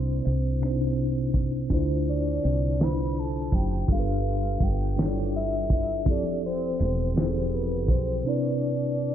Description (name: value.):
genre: slow six-eight R&B.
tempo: 55 BPM (dotted quarters).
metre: 6/8.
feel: straight.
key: unclear.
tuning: A4 = 436 Hz.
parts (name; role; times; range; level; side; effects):
soft octave-layered synth lead; melody; 0.0-9.1 s; B4 to B5; -31 LUFS; left 2 dB; chorus, tremolo, slapback echo.
mellow tine electric piano; accompaniment; 0.0-9.1 s; C3 to D5; -28 LUFS; equal; medium stereo tremolo, slapback echo.
woody fretless electric bass; bass; 0.0-8.2 s; E1 to D2; -28 LUFS; right 1 dB; none.
cloth-damped thuddy drum kit; drums; 0.2-8.1 s; finger snaps, hi-hat, kick drum, snare drum; -26 LUFS; equal; none.
room: light reverb, studio ambience.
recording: low-pass filter.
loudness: -23 LUFS.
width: side -10 dB against mid.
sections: 0.0-9.1 A section.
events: filter sweep 0.0-9.1.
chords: 0.0 Cadd9; 1.7 Dm7; 3.9 G13; 6.1 Fmaj9; 8.2 Cmaj9.